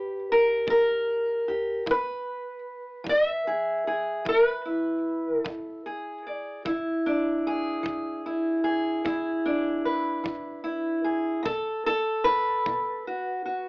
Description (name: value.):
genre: acoustic country blues, solo or duo.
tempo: 50 BPM (dotted quarters).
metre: 12/8.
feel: straight.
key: E mixolydian.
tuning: A4 = 440 Hz.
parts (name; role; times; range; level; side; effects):
fingerpicked steel-string acoustic guitar; melody; 0.0-13.7 s; A#2 to E5; -24 LUFS; equal; none.
kick drum; drums; 0.7-12.9 s; none; -40 LUFS; equal; none.
room: moderate small room reverb, RT60 0.5 s.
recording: AM radio sound.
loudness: -24 LUFS.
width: side -26 dB against mid.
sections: 0.0-13.7 A section.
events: none.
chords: 0.0 A#5; 1.9 E7; 11.5 B7(no3).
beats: 0.67 | 1.87 3.07 4.27 5.46 | 6.66 7.86 9.06 10.27 | 11.47 12.67.